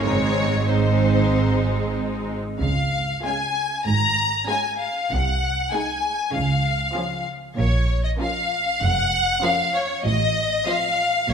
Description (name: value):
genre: quick classical-period movement for string orchestra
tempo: 97 BPM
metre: 4/4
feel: straight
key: Db major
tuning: A4 = 440 Hz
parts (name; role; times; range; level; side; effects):
- rich symphonic violin section; melody; 0.0-11.3 s; C5 to Bb5; -22 LUFS; left 3 dB; none
- rich symphonic violin section; second line; 0.0-11.1 s; Eb4 to C5; -31 LUFS; left 1 dB; none
- rich symphonic viola section; accompaniment; 0.0-11.1 s; F3 to Eb4; -28 LUFS; right 4 dB; none
- rich symphonic cello section; bass; 0.0-11.3 s; F2 to Db3; -25 LUFS; right 2 dB; none
- rich symphonic double bass section; bass; 0.0-11.3 s; F1 to Db2; -26 LUFS; right 2 dB; none
room: wet scoring stage reverb, RT60 1.7 s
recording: minimal, uncompressed stereo recording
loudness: -19 LUFS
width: side -7 dB against mid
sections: 0.0-2.6 A section; 2.6-11.3 B section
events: none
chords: 0.0 Ab; 2.6 Db; 5.1 Ab7/C; 6.3 Db; 7.6 Bbm; 10.0 F7/A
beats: | 0.03 0.68 1.32 1.96 | 2.60 3.23 3.85 4.47 | 5.10 5.72 6.34 6.95 | 7.57 8.19 8.81 9.43 | 10.05 10.67 11.28